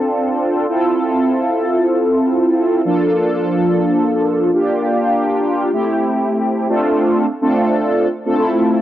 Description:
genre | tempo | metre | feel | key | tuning
pop | 125 BPM | 4/4 | straight | D minor | A4 = 440 Hz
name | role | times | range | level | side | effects
mellow synth brass | solo | 0.0-8.8 s | F3 to A4 | -14 LUFS | equal | chorus, phaser, cassette tape, tape echo
room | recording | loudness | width
light reverb | home recording on cassette | -14 LUFS | side -12 dB against mid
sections
0.0-6.7 A section; 6.7-8.8 B section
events
drop 6.7-8.8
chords
0.0 Dm7; 0.7 Fmaj7; 2.9 Bbmaj7/F; 4.5 Gm7; 5.7 Am7; 6.7 Dm7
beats
0.46 | 0.94 1.42 1.90 2.38 | 2.85 3.33 3.81 4.29 | 4.78 5.25 5.74 6.21 | 6.70 7.17 7.66 8.13 | 8.62

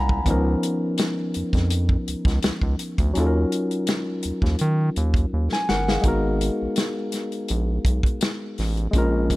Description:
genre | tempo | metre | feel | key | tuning
R&B, neo-soul | 83 BPM | 4/4 | swing 55% on 16ths | G# dorian | A4 = 440 Hz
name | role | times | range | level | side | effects
barky tine electric piano | accompaniment | 0.0-9.4 s | D#3 to B5 | -25 LUFS | left 1 dB | overdrive
round analog bass | bass | 0.0-9.4 s | G1 to D#3 | -22 LUFS | equal | none
warm soul drum kit | drums | 0.1-9.4 s | hi-hat, kick drum, snare drum | -23 LUFS | equal | none
room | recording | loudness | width
small room ambience | none | -20 LUFS | side -19 dB against mid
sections
0.0-6.0 A section; 6.0-9.4 B section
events
tine electric piano fill 0.0; drum fill 5.3-6.0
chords
0.3 C#13; 3.1 D#m9; 6.0 G#m9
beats
| 0.25 0.98 1.70 2.42 | 3.15 3.87 4.59 5.31 | 6.04 6.76 7.48 8.21 | 8.93

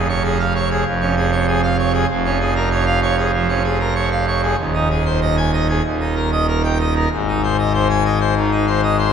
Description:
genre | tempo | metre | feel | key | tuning
classical, organ toccata | 96 BPM | 4/4 | straight | Ab major | A4 = 440 Hz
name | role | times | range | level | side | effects
pipe organ, full organ | solo | 0.0-9.1 s | Eb1 to Ab5 | -15 LUFS | right 1 dB | none
room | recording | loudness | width
wet church reverb, RT60 2.9 s | none | -15 LUFS | side -7 dB against mid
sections
0.0-9.1 A section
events
none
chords
0.0 Db/F; 2.1 Bbm7/F; 4.6 Ab/Eb; 5.8 Eb; 7.1 Ab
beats
0.24 0.86 1.47 | 2.09 2.70 3.33 3.95 | 4.58 5.21 5.85 6.48 | 7.11 7.73 8.36 8.98

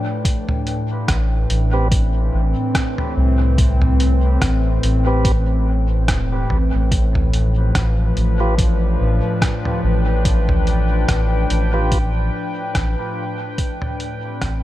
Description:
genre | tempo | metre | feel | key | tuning
ambient dub | 72 BPM | 4/4 | swing 56% on 16ths | A minor | A4 = 437 Hz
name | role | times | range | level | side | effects
warbly tape-like pad | sustained chords | 0.0-14.6 s | A2 to G5 | -22 LUFS | left 1 dB | chorus, built-in reverb
electronic kick drum | drums | 0.2-14.6 s | none | -20 LUFS | equal | none
lo-fi sampler-style drum kit | drums | 0.3-14.6 s | hi-hat, rim click, toms | -25 LUFS | equal | dub echo
soft dub sub bass | bass | 1.1-14.6 s | E1 to C2 | -17 LUFS | equal | none
tonewheel organ | stabs | 1.7-12.0 s | C4 to B4 | -28 LUFS | right 2 dB | stopped rotary speaker, dub echo
room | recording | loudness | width
light reverb, digital ambience | none | -16 LUFS | side -14 dB against mid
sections
0.0-14.6 A section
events
fade-out 11.4-14.6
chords
0.3 Am9; 6.9 G7/A; 13.6 Am9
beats
| 0.25 1.08 1.92 2.75 | 3.58 4.42 5.25 6.08 | 6.92 7.75 8.58 9.42 | 10.25 11.08 11.92 12.75 | 13.58 14.42

